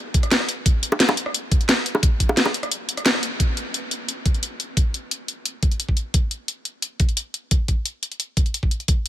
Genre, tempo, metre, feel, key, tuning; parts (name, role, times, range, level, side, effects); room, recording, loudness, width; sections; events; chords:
drum and bass; 175 BPM; 4/4; straight
drum and bass drum kit; drums; 0.1-9.1 s; hi-hat, rim click, snare drum; -22 LUFS; equal
electronic kick drum; drums; 0.1-9.0 s; -19 LUFS; equal
bongos; percussion; 0.9-2.5 s; -28 LUFS; equal
digital ambience; -20 LUFS; side -12 dB against mid
0.0-3.4 A section; 3.4-9.1 B section
drop 0.0-3.4; break 2.7-3.4; band accent 3.1